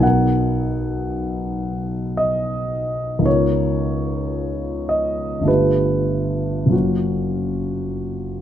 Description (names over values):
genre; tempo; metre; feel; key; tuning
classical, impressionist solo piano; 47-57 BPM; 3/4; rubato; unclear; A4 = 441 Hz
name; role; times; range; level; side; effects
warm concert grand piano; solo; 0.0-8.4 s; F#1 to F#5; -18 LUFS; equal; none
room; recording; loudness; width
light reverb; close, detailed microphones; -18 LUFS; side -10 dB against mid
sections
0.0-8.4 A section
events
none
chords
0.0 Bmaj7; 3.3 C#13; 5.5 G9; 6.7 F#maj7